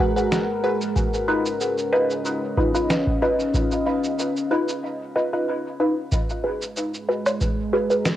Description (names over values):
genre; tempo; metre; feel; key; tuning
ambient dub; 93 BPM; 4/4; swing 54% on 16ths; G# dorian; A4 = 443 Hz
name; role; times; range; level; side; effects
deep dark ambient pad; sustained chords; 0.0-8.2 s; G#3 to A#5; -26 LUFS; equal; chorus, built-in reverb, cassette tape
filtered dub chord stab; stabs; 0.0-8.1 s; D#4 to B4; -23 LUFS; equal; phaser, wide subtle chorus, cassette tape, dub echo
electronic cabasa, snare drum and woodblock; drums; 0.2-8.2 s; none; -26 LUFS; equal; cassette tape, dub echo
electronic kick drum; drums; 1.0-7.5 s; none; -24 LUFS; equal; cassette tape
room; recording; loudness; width
light reverb; home recording on cassette; -20 LUFS; side -12 dB against mid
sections
0.0-6.1 A section; 6.1-8.2 B section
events
none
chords
0.0 G#m7; 1.0 C#9; 6.1 G#m7